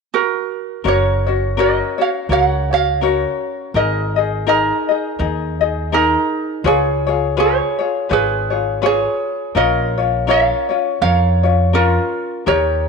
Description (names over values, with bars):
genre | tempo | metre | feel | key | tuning
Hawaiian | 83 BPM | 4/4 | swing 57% on 8ths | F# major | A4 = 444 Hz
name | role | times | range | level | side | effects
ukulele | melody | 0.1-12.9 s | D#4 to F#5 | -19 LUFS | right 10 dB | none
ukulele | accompaniment | 0.8-12.9 s | C#4 to D#5 | -18 LUFS | left 12 dB | none
upright bass | bass | 0.8-12.9 s | F#1 to E#2 | -20 LUFS | right 1 dB | tube saturation
room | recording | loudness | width
moderate echo chamber reverb, RT60 1.7 s, studio ambience | 1960s-style stereo with parts hard left and right | -15 LUFS | side -4 dB against mid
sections
0.8-12.9 A section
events
none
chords
0.0 N.C.; 0.8 F#; 3.7 G#sus2; 6.7 C#7; 9.6 A#m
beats
0.12 | 0.84 1.57 2.29 3.02 | 3.75 4.47 5.20 5.92 | 6.65 7.38 8.10 8.83 | 9.56 10.29 11.01 11.74 | 12.46